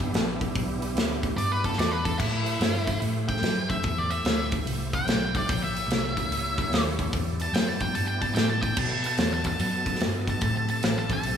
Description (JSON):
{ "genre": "blues rock power trio and southern rock", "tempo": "146 BPM", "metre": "4/4", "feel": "swing 65% on 8ths", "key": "E minor", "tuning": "A4 = 443 Hz", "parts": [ { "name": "overdriven tonewheel organ", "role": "sustained chords", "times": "0.0-11.4 s", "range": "A3 to E5", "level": "-35 LUFS", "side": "right 3 dB", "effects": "chorus vibrato, fast rotary speaker" }, { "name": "vintage muted fingered electric bass", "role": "bass", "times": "0.0-11.4 s", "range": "G1 to B2", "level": "-30 LUFS", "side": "equal", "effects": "none" }, { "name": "big rock drum kit", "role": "drums", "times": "0.0-11.4 s", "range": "crash cymbal, hi-hat, kick drum, snare drum", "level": "-27 LUFS", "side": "left 1 dB", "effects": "none" }, { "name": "octave-fuzz lead guitar", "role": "melody", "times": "1.4-11.4 s", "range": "E4 to A5", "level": "-30 LUFS", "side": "equal", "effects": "distortion, slapback echo, digital delay" } ], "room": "moderate lush hall reverb, RT60 2.2 s", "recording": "big arena sound, small room ambience", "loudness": "-24 LUFS", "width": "side -8 dB against mid", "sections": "0.0-11.4 A section", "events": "lead electric guitar solo 0.0-11.4", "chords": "0.0 Em7; 2.2 Am7; 5.5 A#dim7; 7.1 Em7; 8.8 B7; 10.4 Am7", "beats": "0.14 | 0.55 0.96 1.38 1.79 | 2.20 2.61 3.02 3.43 | 3.84 4.25 4.66 5.08 | 5.49 5.90 6.31 6.72 | 7.13 7.54 7.95 8.36 | 8.77 9.18 9.60 10.01 | 10.42 10.83 11.24" }